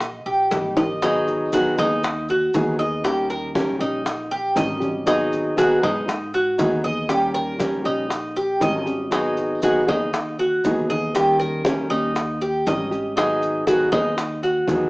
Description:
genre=latin, Cuban son and guajira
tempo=118 BPM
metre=4/4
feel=straight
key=G# minor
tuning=A4 = 439 Hz
part: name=nylon-string guitar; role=accompaniment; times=0.0-14.9 s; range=D#3 to G#4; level=-23 LUFS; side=equal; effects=none
part: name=Cuban tres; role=arpeggios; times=0.0-14.9 s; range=D#4 to D#5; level=-22 LUFS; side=equal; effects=none
part: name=upright bass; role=bass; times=0.0-14.9 s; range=G#1 to G#2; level=-32 LUFS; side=equal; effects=none
part: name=bongos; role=percussion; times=0.0-14.9 s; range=none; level=-26 LUFS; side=left 1 dB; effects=none
part: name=congas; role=percussion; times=0.0-14.9 s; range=none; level=-29 LUFS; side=equal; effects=none
part: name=maracas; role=percussion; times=0.0-14.9 s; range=none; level=-42 LUFS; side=right 1 dB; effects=none
room=moderate studio reverb, RT60 0.8 s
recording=worn, warbling old tape, cassette tape, warbly pitch drift, small speaker sound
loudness=-19 LUFS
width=side -25 dB against mid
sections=0.0-1.0 A section; 1.0-14.9 B section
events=drum fill 0.5-1.0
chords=0.0 D#; 1.0 G#m7; 3.0 D#7; 5.1 G#m7; 7.1 D#7; 9.1 G#m7; 11.1 D#7; 13.2 G#m7

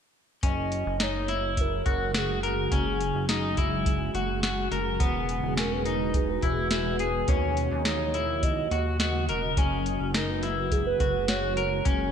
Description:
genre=dream pop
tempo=105 BPM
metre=4/4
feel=straight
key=F# mixolydian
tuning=A4 = 440 Hz
part: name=granular cloud pad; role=sustained chords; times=1.5-12.1 s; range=B2 to D#5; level=-32 LUFS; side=equal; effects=built-in reverb, wide subtle chorus
part: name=electric guitar at the edge of break-up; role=arpeggios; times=0.4-12.1 s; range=B3 to A#4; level=-30 LUFS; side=left 4 dB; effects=wide subtle chorus, digital delay
part: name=chorused synth bass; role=bass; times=0.4-12.1 s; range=E1 to D#2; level=-32 LUFS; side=equal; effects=none
part: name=soft vintage rhythm box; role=drums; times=0.4-12.0 s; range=hi-hat, kick drum, snare drum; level=-28 LUFS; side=equal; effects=gated reverb
part: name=hollow clarinet-like synth lead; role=melody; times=0.5-12.1 s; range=G#4 to D#5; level=-32 LUFS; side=right 4 dB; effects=chorus, phaser, digital delay
room=moderate lush hall reverb, RT60 1.9 s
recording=bright 1980s-style digital production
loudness=-24 LUFS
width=side -8 dB against mid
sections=0.4-12.1 A section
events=none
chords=0.4 F#sus2; 5.0 E; 7.3 D#m7; 9.6 F#sus2

